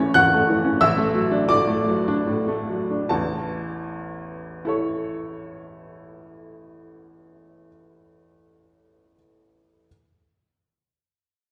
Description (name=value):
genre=classical, romantic character piece for solo piano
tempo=68-93 BPM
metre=3/4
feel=rubato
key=A major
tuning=A4 = 440 Hz
part: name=clear upright piano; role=solo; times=0.0-9.9 s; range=A1 to F#6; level=-22 LUFS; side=equal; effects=none
room=wet recital hall reverb, RT60 1.4 s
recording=heard from further back in the room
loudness=-22 LUFS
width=mono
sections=0.0-3.1 A section; 3.1-7.7 B section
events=slowing down 0.0-3.1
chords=0.0 A; 0.8 D/A; 3.1 A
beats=0.15 | 0.80 1.49 2.26 | 3.10 3.88 4.64 | 5.40 6.17 6.93